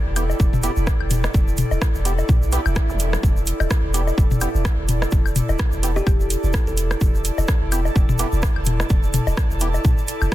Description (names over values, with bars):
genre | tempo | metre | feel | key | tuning
minimal techno | 127 BPM | 4/4 | swing 56% on 16ths | E minor | A4 = 440 Hz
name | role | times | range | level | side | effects
airy breathy pad | texture | 0.0-10.3 s | E4 to A5 | -28 LUFS | right 1 dB | chorus, sidechain pumping
punchy sub bass | bass | 0.1-10.3 s | D1 to B1 | -22 LUFS | equal | sidechain pumping
percussive organ stab | stabs | 0.2-9.7 s | B3 to G4 | -31 LUFS | right 2 dB | ensemble chorus, dub echo
house drum kit | drums | 0.2-10.3 s | hi-hat, rim click | -28 LUFS | right 1 dB | soft clipping on snare
egg shaker | percussion | 0.2-10.3 s | none | -35 LUFS | right 3 dB | none
electronic woodblock and toms | percussion | 0.2-10.3 s | none | -25 LUFS | left 4 dB | none
electronic kick drum | drums | 0.4-10.3 s | none | -19 LUFS | equal | none
swell and zap | sound effects | 2.4-3.2 s | none | -33 LUFS | right 2 dB | none
kalimba | melody | 6.0-6.7 s | G4 to A4 | -32 LUFS | left 1 dB | dub echo
room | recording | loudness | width
digital ambience | dense, heavily limited modern master | -17 LUFS | side -15 dB against mid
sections
0.0-10.3 A section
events
swell 2.4-3.2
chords
0.0 Em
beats
0.40 0.87 | 1.34 1.82 2.29 2.76 | 3.23 3.71 4.18 4.65 | 5.12 5.59 6.07 6.54 | 7.01 7.49 7.96 8.43 | 8.90 9.38 9.85 10.32